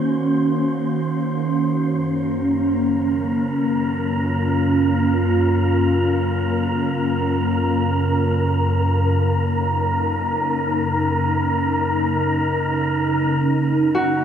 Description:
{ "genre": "ambient", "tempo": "free time", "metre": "none", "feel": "none", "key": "unclear", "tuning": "A4 = 442 Hz", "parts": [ { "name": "glassy FM pad", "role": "sustained chords", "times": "0.0-14.2 s", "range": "Gb2 to Gb4", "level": "-18 LUFS", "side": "equal", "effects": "ensemble chorus, built-in reverb, phaser" }, { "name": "wind-like tuned noise texture", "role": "texture", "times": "0.0-14.2 s", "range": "Bb4 to C6", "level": "-25 LUFS", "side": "equal", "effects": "built-in reverb" }, { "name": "concert harp", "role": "arpeggios", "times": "13.9-14.2 s", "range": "Gb4", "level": "-19 LUFS", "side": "equal", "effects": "none" } ], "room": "wet huge ambient reverb, RT60 8.2 s", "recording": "dark, warm production", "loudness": "-18 LUFS", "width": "side -8 dB against mid", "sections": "0.0-13.5 A section", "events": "fade-in on synth texture 0.0-13.5", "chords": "0.0 Gb6; 1.9 Bbm/Gb; 13.5 Gb6" }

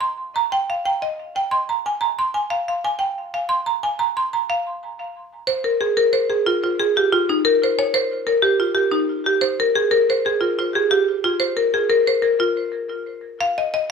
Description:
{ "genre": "celtic folk", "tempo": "121 BPM (dotted quarters)", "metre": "6/8", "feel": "straight", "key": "F minor", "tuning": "A4 = 440 Hz", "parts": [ { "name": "buzzing marimba with hard mallets", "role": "solo", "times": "0.0-13.9 s", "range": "Eb4 to C6", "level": "-18 LUFS", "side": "equal", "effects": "tape echo" } ], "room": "light reverb", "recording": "close, detailed microphones", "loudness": "-18 LUFS", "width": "side -6 dB against mid", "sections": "0.0-5.5 A section; 5.5-13.4 A section", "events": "none", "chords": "none" }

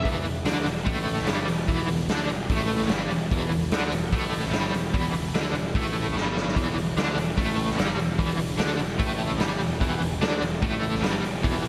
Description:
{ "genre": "blues rock power trio and southern rock", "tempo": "148 BPM", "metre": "4/4", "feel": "straight", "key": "unclear", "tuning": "A4 = 440 Hz", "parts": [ { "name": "crunchy overdriven guitar", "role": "riff", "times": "0.0-11.7 s", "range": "E2 to D4", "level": "-30 LUFS", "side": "equal", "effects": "tremolo" }, { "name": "fuzz picked electric bass", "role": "bass", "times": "0.0-11.7 s", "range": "E1 to D2", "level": "-33 LUFS", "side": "equal", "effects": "overdrive" }, { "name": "raw garage drum kit", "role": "drums", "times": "0.1-11.7 s", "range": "hi-hat, kick drum, snare drum", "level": "-29 LUFS", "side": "equal", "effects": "none" } ], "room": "light reverb, studio reverb", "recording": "none", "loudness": "-26 LUFS", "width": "mono", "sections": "0.1-11.7 A section", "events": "drum fill 6.2-6.6", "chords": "0.1 Emadd11" }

